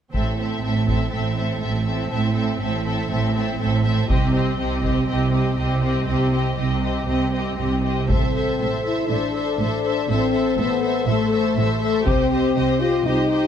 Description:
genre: cinematic, epic orchestral film score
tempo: 121 BPM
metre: 4/4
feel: straight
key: A minor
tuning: A4 = 439 Hz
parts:
  - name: rich symphonic violin section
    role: melody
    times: 0.1-13.5 s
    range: Eb5 to E5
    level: -31 LUFS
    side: left 3 dB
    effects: none
  - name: warm symphonic viola section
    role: accompaniment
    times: 0.1-13.5 s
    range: C4 to A4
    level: -27 LUFS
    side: left 1 dB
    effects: none
  - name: warm symphonic cello section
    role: bass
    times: 0.1-13.5 s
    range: A2 to C3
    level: -25 LUFS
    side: right 2 dB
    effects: none
  - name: warm symphonic double bass section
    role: bass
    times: 0.1-13.5 s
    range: A1 to C2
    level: -25 LUFS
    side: right 3 dB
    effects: none
  - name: taiko ensemble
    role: drums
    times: 0.1-1.1, 4.1-5.1, 8.1-9.1, 12.1-13.0 s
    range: none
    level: -24 LUFS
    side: equal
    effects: none
  - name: warm symphonic violin section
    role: second line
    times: 0.2-13.5 s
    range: G4 to C5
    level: -29 LUFS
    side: left 2 dB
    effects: none
  - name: warm French horn section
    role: sustained chords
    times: 8.1-13.5 s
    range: A3 to F4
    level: -22 LUFS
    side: left 4 dB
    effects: none
room: moderate scoring stage reverb, RT60 1.8 s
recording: none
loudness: -19 LUFS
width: side -8 dB against mid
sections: 0.1-8.1 A section; 8.1-13.5 B section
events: none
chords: 0.1 Am; 4.1 Cm; 8.1 Am; 12.1 Cm

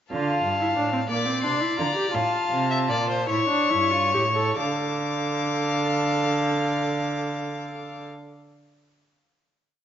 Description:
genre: classical, baroque-style fugue for string quartet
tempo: 42-62 BPM (dotted quarters)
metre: 6/8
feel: straight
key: D minor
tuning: A4 = 440 Hz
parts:
  - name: rich violin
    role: melody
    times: 0.1-8.1 s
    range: A5 to D6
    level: -27 LUFS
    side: left 7 dB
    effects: none
  - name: rich violin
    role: second line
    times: 0.1-8.1 s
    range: C5 to F5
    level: -28 LUFS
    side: left 2 dB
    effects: none
  - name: warm viola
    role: accompaniment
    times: 0.1-8.1 s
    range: Bb3 to A4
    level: -28 LUFS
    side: right 2 dB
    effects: none
  - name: warm cello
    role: bass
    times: 0.1-8.1 s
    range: G2 to D3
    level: -28 LUFS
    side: right 4 dB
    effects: none
room: moderate recital hall reverb, RT60 1.7 s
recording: nothing above 7.8 kHz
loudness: -22 LUFS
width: side -9 dB against mid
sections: 0.1-4.6 exposition; 4.6-9.8 final chord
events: slowing down 0.1-6.0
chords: 0.1 Dm; 1.1 Bb; 2.1 Dm/A (rootless); 3.3 A7; 4.6 Dm

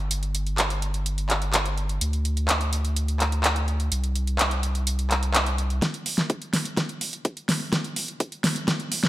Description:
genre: EDM, festival progressive house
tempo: 126 BPM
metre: 4/4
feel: straight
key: unclear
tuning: A4 = 439 Hz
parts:
  - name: saturated sub bass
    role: bass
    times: 0.0-5.8 s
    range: G1 to D2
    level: -25 LUFS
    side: equal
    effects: sidechain pumping
  - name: pop drum kit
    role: drums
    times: 0.1-9.1 s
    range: handclaps, hi-hat, snare drum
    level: -24 LUFS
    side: equal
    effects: none
  - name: electronic kick drum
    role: drums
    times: 5.8-8.8 s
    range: none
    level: -27 LUFS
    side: equal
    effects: high-pass filter on kick
room: light reverb, digital ambience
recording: none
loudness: -23 LUFS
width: side -15 dB against mid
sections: 0.0-5.8 A section; 5.8-9.1 B section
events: build-up 5.8-9.1; drum fill 5.8-9.1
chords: none

